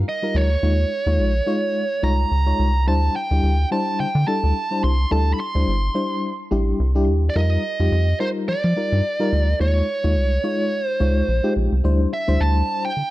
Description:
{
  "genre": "early-eighties boogie funk",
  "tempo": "107 BPM",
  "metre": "4/4",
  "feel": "swing 56% on 16ths",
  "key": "unclear",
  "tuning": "A4 = 441 Hz",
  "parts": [
    { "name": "FM electric piano with tremolo", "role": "accompaniment", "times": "0.0-12.9 s", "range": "G3 to Db5", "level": "-24 LUFS", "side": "left 2 dB", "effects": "none" },
    { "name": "rubbery square bass", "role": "bass", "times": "0.0-13.0 s", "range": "G1 to F3", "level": "-18 LUFS", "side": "equal", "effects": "none" },
    { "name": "bluesy overdriven lead guitar", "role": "melody", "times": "0.1-13.1 s", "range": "C5 to C6", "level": "-24 LUFS", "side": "right 2 dB", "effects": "distortion" }
  ],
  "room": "digital ambience",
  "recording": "dark, warm production, nothing above 10.6 kHz",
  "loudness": "-18 LUFS",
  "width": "side -16 dB against mid",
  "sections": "0.0-11.8 A section; 11.8-13.1 B section",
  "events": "none",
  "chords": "0.0 F9sus4; 0.6 Eb9sus4; 2.9 D9sus4; 7.4 F9sus4; 9.6 Eb9sus4; 11.8 D9sus4",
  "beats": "0.07 | 0.63 1.19 1.75 2.31 | 2.87 3.43 3.99 4.55 | 5.12 5.67 6.24 6.80 | 7.36 7.92 8.48 9.04 | 9.60 10.16 10.72 11.28 | 11.84 12.40 12.96"
}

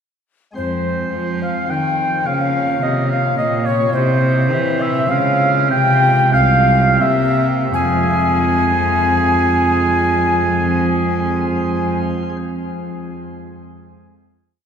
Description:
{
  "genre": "classical, baroque-style sonata movement with continuo",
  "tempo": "81-109 BPM",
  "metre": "3/4",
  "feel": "straight",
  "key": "F minor",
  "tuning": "A4 = 440 Hz",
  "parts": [
    { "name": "chamber organ, sparkling flutes", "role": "accompaniment", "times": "0.5-12.4 s", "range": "C2 to Db5", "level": "-22 LUFS", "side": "right 1 dB", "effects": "none" },
    { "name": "mellow tenor recorder", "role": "melody", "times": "0.6-12.0 s", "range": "C5 to Ab5", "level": "-19 LUFS", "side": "left 4 dB", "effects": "none" },
    { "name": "clear oboe", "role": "second line", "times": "0.6-12.0 s", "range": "Ab4 to G5", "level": "-21 LUFS", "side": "right 4 dB", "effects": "none" },
    { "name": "rich cello", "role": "bass", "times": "0.6-12.0 s", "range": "C2 to F3", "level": "-19 LUFS", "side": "right 1 dB", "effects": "none" }
  ],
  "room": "wet cathedral reverb, RT60 6.8 s",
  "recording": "recorded in a church or concert hall",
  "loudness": "-14 LUFS",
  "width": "side -7 dB against mid",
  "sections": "0.6-7.7 A section; 7.7-12.1 final chord",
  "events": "slowing down 3.1-7.7",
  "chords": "0.6 Fm; 1.7 Cm/Eb; 2.3 Bbm; 3.9 C; 5.1 Db; 5.7 Fm/C; 7.0 C7; 7.7 Fm",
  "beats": "| 0.57 1.14 1.70 | 2.27 2.82 3.38 | 3.94 4.52 5.10 | 5.71 6.34 7.02 | 7.75 8.47 9.20 | 9.92 10.64 11.36"
}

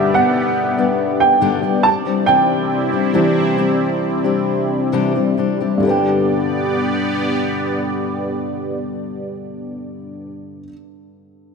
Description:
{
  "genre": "pop",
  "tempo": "65-72 BPM",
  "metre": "4/4",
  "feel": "straight",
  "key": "G major",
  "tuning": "A4 = 441 Hz",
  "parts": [
    { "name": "dark upright piano", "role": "accompaniment", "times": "0.0-11.5 s", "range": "G2 to A5", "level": "-18 LUFS", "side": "right 3 dB", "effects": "none" },
    { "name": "sweeping resonant pad", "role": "sustained chords", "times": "0.0-10.3 s", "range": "B3 to D5", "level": "-21 LUFS", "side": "equal", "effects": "chorus" },
    { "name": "fingerpicked steel-string acoustic guitar", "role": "arpeggios", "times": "0.0-10.8 s", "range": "G2 to G4", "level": "-21 LUFS", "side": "left 7 dB", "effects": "none" }
  ],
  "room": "moderate concert hall reverb, RT60 2.5 s",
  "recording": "none",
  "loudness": "-15 LUFS",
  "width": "side -5 dB against mid",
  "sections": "0.0-5.8 A section; 5.8-9.6 B section",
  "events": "slowing down 0.0-5.8; upright piano solo 0.0-5.8",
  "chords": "0.0 G; 1.8 Cadd9; 5.8 G",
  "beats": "0.57 1.42 | 2.27 3.14 4.02 4.92 | 5.84 6.77 7.70 8.63"
}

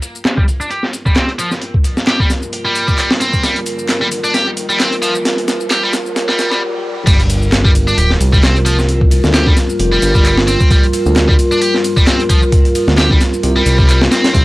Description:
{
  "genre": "breakbeat, breaks",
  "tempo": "132 BPM",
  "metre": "4/4",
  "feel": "swing 56% on 16ths",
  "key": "G minor pentatonic",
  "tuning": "A4 = 443 Hz",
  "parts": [
    { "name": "dark analog pad", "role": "sustained chords", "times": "0.0-14.4 s", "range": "G3 to Eb5", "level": "-19 LUFS", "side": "equal", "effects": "wide subtle chorus, sidechain pumping" },
    { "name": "breakbeat sampler-style drum kit", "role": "drums", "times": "0.0-14.4 s", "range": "crash cymbal, hi-hat, kick drum, snare drum", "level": "-13 LUFS", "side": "equal", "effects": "low-pass filter on hats, small room ambience, low-pass filter on snare, low-pass filter on kick, low-pass filter on cymbals" },
    { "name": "house drum kit", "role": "drums", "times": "0.0-14.4 s", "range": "handclaps, ride cymbal, shaker", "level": "-26 LUFS", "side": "equal", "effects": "high-pass filter on perc, small room ambience, high-pass filter on snare, high-pass filter on cymbals" },
    { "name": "riser, swell and sub drop", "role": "sound effects", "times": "1.7-8.9 s", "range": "none", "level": "-28 LUFS", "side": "equal", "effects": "none" },
    { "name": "high-gain distorted guitar", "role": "riff", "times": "0.4-14.4 s", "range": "F3 to G4", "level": "-17 LUFS", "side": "equal", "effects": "distortion, tube saturation, low-pass filter, analog delay" },
    { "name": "fat analog bass", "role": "bass", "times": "7.1-14.4 s", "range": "D1 to D2", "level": "-14 LUFS", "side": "equal", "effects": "none" }
  ],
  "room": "little or no reverb",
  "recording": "dry, gritty hardware recording, cassette tape, high-pass filter",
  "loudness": "-11 LUFS",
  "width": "side -19 dB against mid",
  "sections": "0.0-7.1 A section; 7.1-14.4 B section",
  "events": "build-up 0.0-7.1; filter sweep on drum 0.0-7.1; filter sweep on analog synth pad 0.0-7.1; filter sweep 0.0-7.1; riser 1.7-7.1; drum fill 3.4-6.6; swell 6.2-7.1; break 6.6-7.1; drop 7.1-14.4; impact 7.1-8.9",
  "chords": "0.0 Gm7",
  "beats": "0.25 0.71 1.16 | 1.61 2.07 2.52 2.98 | 3.43 3.89 4.34 4.80 | 5.25 5.71 6.16 6.62 | 7.07 7.52 7.98 8.43 | 8.89 9.34 9.80 10.25 | 10.71 11.16 11.62 12.07 | 12.52 12.98 13.43 13.89 | 14.34"
}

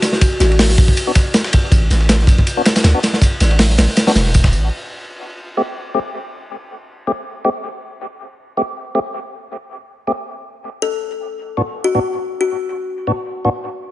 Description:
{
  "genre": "drum and bass, jungle",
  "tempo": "160 BPM",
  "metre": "4/4",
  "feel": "swing 55% on 16ths",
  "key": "A dorian",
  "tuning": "A4 = 440 Hz",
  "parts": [
    { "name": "kalimba", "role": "melody", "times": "0.0-0.7, 10.8-12.7 s", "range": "F#4 to A4", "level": "-21 LUFS", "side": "left 4 dB", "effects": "dub echo" },
    { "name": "crunchy breakbeat drum kit", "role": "drums", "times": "0.0-4.5 s", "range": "hi-hat, kick drum, ride cymbal, snare drum", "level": "-14 LUFS", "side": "equal", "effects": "none" },
    { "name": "dusty soul sampler-style drum kit", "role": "drums", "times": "0.0-4.6 s", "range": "hi-hat, snare drum, tambourine", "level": "-24 LUFS", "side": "equal", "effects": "high-pass filter on snare, high-pass filter on perc, high-pass filter on hats" },
    { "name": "long sustained 808-style bass", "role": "bass", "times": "0.4-4.7 s", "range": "E1 to D2", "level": "-14 LUFS", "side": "equal", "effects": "none" },
    { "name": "tonewheel organ", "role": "stabs", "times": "1.1-13.5 s", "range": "A2 to G4", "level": "-21 LUFS", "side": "left 1 dB", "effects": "slow rotary speaker, low-pass filter, dub echo" }
  ],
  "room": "little or no reverb",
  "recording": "nothing above 10.6 kHz",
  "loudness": "-14 LUFS",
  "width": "side -16 dB against mid",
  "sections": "0.0-4.7 A section; 4.7-13.9 B section",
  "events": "drop 0.0-4.7",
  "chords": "0.0 N.C.; 4.7 Am7; 10.7 Bm/A",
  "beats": "| 0.22 0.59 0.97 1.34 | 1.72 2.09 2.47 2.84 | 3.22 3.59 3.97 4.34 | 4.72 5.09 5.47 5.84 | 6.22 6.59 6.97 7.34 | 7.72 8.09 8.47 8.84 | 9.22 9.59 9.97 10.34 | 10.72 11.09 11.47 11.84 | 12.22 12.59 12.97 13.34"
}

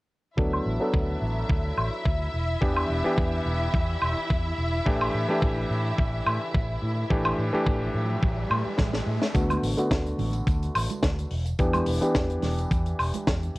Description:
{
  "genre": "nu-disco, nu disco",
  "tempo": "107 BPM",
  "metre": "4/4",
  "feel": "swing 54% on 16ths",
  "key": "unclear",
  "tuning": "A4 = 442 Hz",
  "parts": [
    { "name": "warm electric grand piano", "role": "accompaniment", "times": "0.4-13.6 s", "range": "D3 to A4", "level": "-29 LUFS", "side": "equal", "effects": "low-pass filter, cassette tape, tape echo" },
    { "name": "clear studio string section", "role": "sustained chords", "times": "0.4-9.4 s", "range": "E4 to E5", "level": "-33 LUFS", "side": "equal", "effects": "sidechain pumping, cassette tape" },
    { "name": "fingered electric bass with an envelope filter", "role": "bass", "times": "0.4-13.6 s", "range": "E1 to A2", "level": "-29 LUFS", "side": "equal", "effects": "tube saturation" },
    { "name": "electronic kick drum", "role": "drums", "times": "0.4-13.4 s", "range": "none", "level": "-26 LUFS", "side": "equal", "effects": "cassette tape" },
    { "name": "tight funk drum kit", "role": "drums", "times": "0.5-13.6 s", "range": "hi-hat, snare drum, woodblock", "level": "-28 LUFS", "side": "equal", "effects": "low-pass filter on hats, cassette tape, low-pass filter on snare, low-pass filter on perc, low-pass filter on room" },
    { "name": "riser", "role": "sound effects", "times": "6.5-9.3 s", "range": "none", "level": "-37 LUFS", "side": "right 1 dB", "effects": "none" },
    { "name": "tambourine and congas", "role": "percussion", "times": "9.4-13.5 s", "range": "none", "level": "-38 LUFS", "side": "right 7 dB", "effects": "none" }
  ],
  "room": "little or no reverb",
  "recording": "home recording on cassette",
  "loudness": "-23 LUFS",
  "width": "side -21 dB against mid",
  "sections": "0.4-9.3 A section; 9.3-13.6 B section",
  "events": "filter sweep on drum 0.4-9.3; filter sweep on fingered electric bass 0.4-9.3; filter sweep on electric grand piano 0.4-9.3, 9.3-13.6; riser 6.5-9.3; drum fill 8.8-9.3",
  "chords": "0.4 D6; 2.3 Em7; 4.9 A7sus4; 9.3 D6; 11.3 Em7",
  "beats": "| 0.38 0.94 1.50 2.06 | 2.62 3.18 3.74 4.30 | 4.86 5.42 5.98 6.54 | 7.11 7.67 8.23 8.79 | 9.35 9.91 10.47 11.03 | 11.59 12.15 12.71 13.27"
}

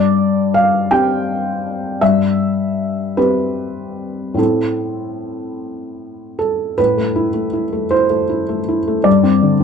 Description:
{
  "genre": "neoclassical minimalist piano",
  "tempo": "51 BPM (dotted quarters)",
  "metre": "6/8",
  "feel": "uneven beats, rubato",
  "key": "A minor",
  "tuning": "A4 = 440 Hz",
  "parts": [
    { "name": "felt-muted upright piano", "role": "solo", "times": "0.0-9.6 s", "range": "G2 to G5", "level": "-15 LUFS", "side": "left 1 dB", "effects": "none" }
  ],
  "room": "moderate studio reverb, RT60 0.6 s",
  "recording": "dark, warm production",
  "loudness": "-14 LUFS",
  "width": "side -6 dB against mid",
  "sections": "0.0-6.8 A section; 6.8-9.6 B section",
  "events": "none",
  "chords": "0.0 Gsus4; 4.4 Am; 6.8 Amadd9; 9.1 Gsus4",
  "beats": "0.91 | 2.01 3.17 | 4.38 5.59 | 6.78 7.92 | 9.06"
}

